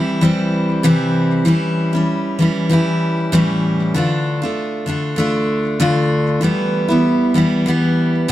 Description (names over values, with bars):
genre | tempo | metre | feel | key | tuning
pop | 97 BPM | 4/4 | swing 55% on 16ths | unclear | A4 = 440 Hz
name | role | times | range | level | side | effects
picked steel-string acoustic guitar | solo | 0.0-8.3 s | E2 to F4 | -14 LUFS | equal | none
room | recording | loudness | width
little or no reverb | dark, warm production | -14 LUFS | side -14 dB against mid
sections
0.0-8.3 A section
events
none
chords
0.0 C; 1.5 A7; 3.9 Dm; 6.4 Em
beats
0.21 0.84 | 1.46 2.08 2.70 3.32 | 3.94 4.56 5.18 5.80 | 6.42 7.04 7.66 8.28